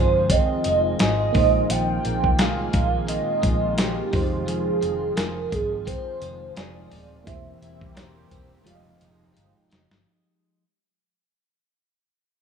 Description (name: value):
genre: indie pop, bedroom pop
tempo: 86 BPM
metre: 4/4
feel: swing 55% on 16ths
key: F minor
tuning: A4 = 440 Hz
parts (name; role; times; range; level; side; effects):
- warm velvety synth lead; melody; 0.0-9.7 s; G4 to G5; -24 LUFS; right 3 dB; phaser, lush chorus, digital delay
- clean electric guitar; accompaniment; 0.0-10.6 s; F2 to Bb4; -33 LUFS; left 5 dB; wide subtle chorus, warbly pitch drift
- reed electric piano; accompaniment; 0.0-10.1 s; Ab3 to Eb5; -33 LUFS; right 5 dB; none
- warm analog pad; sustained chords; 0.0-10.0 s; Eb3 to G4; -31 LUFS; right 2 dB; chorus
- vintage muted fingered electric bass; bass; 0.0-10.0 s; Eb1 to C2; -29 LUFS; equal; none
- dusty soul sampler-style drum kit; drums; 0.3-10.1 s; hi-hat, kick drum, snare drum; -24 LUFS; equal; none
room: light reverb, digital ambience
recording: rough home demo mix, studio ambience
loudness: -20 LUFS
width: side -7 dB against mid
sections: 0.0-10.1 A section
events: fade-out 0.0-10.1; drum fill 8.7-10.1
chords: 0.0 Fm7; 1.3 Bb9sus4; 4.1 Fm7; 7.3 C7/E; 8.7 Fm9